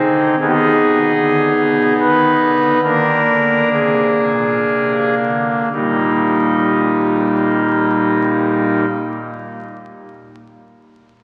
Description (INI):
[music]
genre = classical, chorale-style piece for pipe organ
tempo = 56-77 BPM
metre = 3/4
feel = rubato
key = Eb major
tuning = A4 = 440 Hz
[part]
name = pipe organ, foundations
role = solo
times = 0.0-8.9 s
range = Eb1 to Cb5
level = -16 LUFS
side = equal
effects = none
[sound]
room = wet church reverb, RT60 3.8 s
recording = very old 78 rpm record, vinyl crackle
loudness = -15 LUFS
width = mono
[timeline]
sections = 0.0-5.7 A section; 5.7-8.9 B section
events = slowing down 0.0-5.7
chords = 0.4 Abm/Eb; 2.8 Bb7/Eb; 5.7 Eb